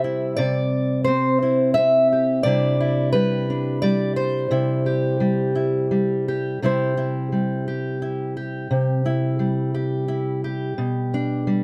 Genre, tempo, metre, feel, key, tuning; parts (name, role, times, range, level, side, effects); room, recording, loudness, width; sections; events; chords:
folk, solo fingerstyle acoustic guitar; 87 BPM; 3/4; straight; C major; A4 = 439 Hz
fingerpicked steel-string acoustic guitar; solo; 0.0-11.6 s; B2 to E5; -22 LUFS; equal
light reverb; close, detailed microphones; -22 LUFS; mono
0.0-6.6 A section; 6.6-11.6 B section
0.0 C; 2.4 Em7/C; 4.5 C; 10.8 G/B